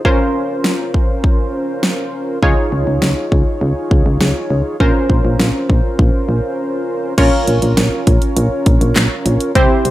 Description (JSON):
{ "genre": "synth-pop", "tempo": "101 BPM", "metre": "4/4", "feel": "straight", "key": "unclear", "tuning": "A4 = 440 Hz", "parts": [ { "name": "funky polysynth comp", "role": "accompaniment", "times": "0.0-9.9 s", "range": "C4 to Db5", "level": "-17 LUFS", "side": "equal", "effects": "chorus" }, { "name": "pop drum kit", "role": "drums", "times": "0.0-9.9 s", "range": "crash cymbal, handclaps, hi-hat, kick drum, snare drum", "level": "-15 LUFS", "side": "equal", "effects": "gated reverb" }, { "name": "solid FM bass", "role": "bass", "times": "2.4-9.9 s", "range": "Bb1 to Db2", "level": "-16 LUFS", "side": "equal", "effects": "none" } ], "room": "digital ambience", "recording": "none", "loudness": "-13 LUFS", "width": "side -15 dB against mid", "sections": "0.0-7.2 A section; 7.2-9.9 B section", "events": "break 6.6-7.2", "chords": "0.1 Bbmadd9; 2.4 Dbadd9; 4.8 Bbmadd9; 7.2 Bbm" }